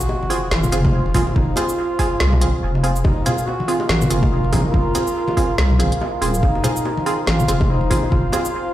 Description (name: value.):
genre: deep dubstep.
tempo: 142 BPM.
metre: 4/4.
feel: swing 58% on 16ths, half-time.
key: F phrygian.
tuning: A4 = 440 Hz.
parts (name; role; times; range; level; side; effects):
mellow duduk; melody; 0.0-8.7 s; Eb4 to Gb4; -25 LUFS; right 1 dB; dub echo.
deep dark ambient pad; sustained chords; 0.1-8.7 s; Bb4 to F5; -28 LUFS; left 1 dB; chorus, built-in reverb.
deep house drum kit; drums; 0.0-8.5 s; hi-hat, shaker, snare drum; -25 LUFS; equal; none.
sub drop; sound effects; 0.0-1.4 s; none; -27 LUFS; equal; none.
bongos and congas; percussion; 0.1-8.4 s; none; -26 LUFS; left 2 dB; dub echo.
filtered dub chord stab; stabs; 0.3-8.4 s; C4 to Ab4; -24 LUFS; right 2 dB; chorus, dub echo.
deep soft wobble bass; bass; 0.5-8.2 s; Eb1 to C2; -18 LUFS; equal; chorus.
electronic kick drum; drums; 0.8-8.2 s; none; -20 LUFS; equal; none.
room: light reverb.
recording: played on a big sound system in a bare room, stone room reverb.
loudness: -16 LUFS.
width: side -13 dB against mid.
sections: 0.0-8.7 A section.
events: impact 0.0-1.4.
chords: 0.0 Fm.